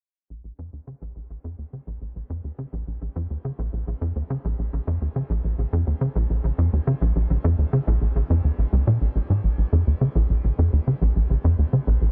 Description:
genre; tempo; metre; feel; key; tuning
ambient; 105 BPM; 4/4; straight; Bb minor; A4 = 440 Hz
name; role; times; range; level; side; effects
tight sequencer bass; riff; 0.3-12.1 s; Bb1 to Db3; -23 LUFS; equal; subtle chorus, tape echo
room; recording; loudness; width
little or no reverb; lossy compression artefacts; -23 LUFS; mono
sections
0.3-9.4 A section; 9.4-12.1 B section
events
fade-in on analog synth bass 0.3-9.4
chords
none

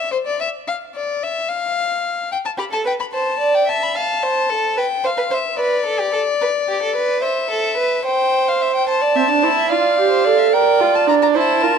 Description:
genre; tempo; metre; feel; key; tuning
classical, baroque-style fugue for string quartet; 73 BPM (dotted quarters); 12/8; straight; F major; A4 = 440 Hz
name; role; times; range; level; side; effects
rich violin; melody; 0.0-11.8 s; C5 to B5; -20 LUFS; left 6 dB; none
rich violin; second line; 2.6-11.8 s; G4 to F5; -18 LUFS; right 3 dB; none
rich viola; accompaniment; 9.2-11.8 s; C4 to Bb4; -16 LUFS; right 9 dB; none
room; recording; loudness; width
moderate concert hall reverb, RT60 2.0 s; close, detailed microphones; -16 LUFS; side -6 dB against mid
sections
0.0-11.8 A section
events
none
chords
0.0 N.C.; 4.0 F; 5.6 G (rootless); 7.2 C; 8.9 F/C; 10.5 Bb

